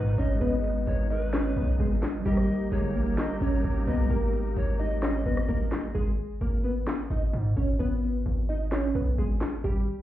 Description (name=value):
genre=hip hop, trap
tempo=130 BPM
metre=4/4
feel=half-time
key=G# harmonic minor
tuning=A4 = 440 Hz
part: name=glassy wavetable pluck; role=melody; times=0.0-10.0 s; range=G3 to D#5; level=-30 LUFS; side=left 1 dB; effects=chorus, low-pass filter, ping-pong delay
part: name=breathy bright pan flute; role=second line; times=0.0-5.9 s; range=B4 to D#5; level=-38 LUFS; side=left 2 dB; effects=ping-pong delay
part: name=mellow tine electric piano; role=accompaniment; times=0.0-6.0 s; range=G3 to D#5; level=-34 LUFS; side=right 1 dB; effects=medium stereo tremolo, low-pass filter
part: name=warm symphonic string section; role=sustained chords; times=0.0-5.9 s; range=D#3 to A#4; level=-40 LUFS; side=right 2 dB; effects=none
part: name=distorted 808-style bass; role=bass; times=0.0-9.9 s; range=G1 to G#2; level=-27 LUFS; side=equal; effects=distortion
part: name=trap drum kit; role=drums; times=0.0-9.5 s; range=handclaps, hi-hat, rim click, snare drum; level=-33 LUFS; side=left 1 dB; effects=none
room=digital ambience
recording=heard muffled through a wall, club reverb, EQ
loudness=-25 LUFS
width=side -13 dB against mid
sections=0.0-5.9 A section; 5.9-10.0 B section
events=hi-hats muted 5.9-10.0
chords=0.0 G#m; 2.3 D#; 5.9 G#m